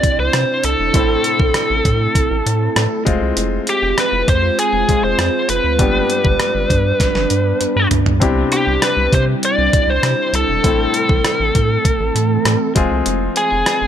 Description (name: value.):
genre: 1980s-style pop.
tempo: 99 BPM.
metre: 4/4.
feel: straight.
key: C major.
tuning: A4 = 441 Hz.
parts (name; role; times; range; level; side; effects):
biting lead guitar; melody; 0.0-13.9 s; G4 to D5; -18 LUFS; equal; overdrive.
clear concert grand piano; accompaniment; 0.0-13.9 s; G2 to A4; -23 LUFS; left 4 dB; none.
ethereal airy pad; sustained chords; 0.0-13.9 s; C3 to F4; -22 LUFS; right 2 dB; ensemble chorus, built-in reverb.
clean 12-bit digital drum machine; drums; 0.0-13.8 s; hi-hat, kick drum, rim click, snare drum, toms; -18 LUFS; equal; none.
rubbery square bass; bass; 0.2-13.9 s; E1 to C3; -20 LUFS; equal; none.
room: light reverb, digital ambience.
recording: none.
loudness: -13 LUFS.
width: side -9 dB against mid.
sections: 0.0-13.9 A section.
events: drum fill 7.0-8.2.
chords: 0.0 Cadd9; 0.9 Am; 3.1 Fm; 5.8 G; 8.2 Cadd9; 10.6 Am; 12.8 Fm.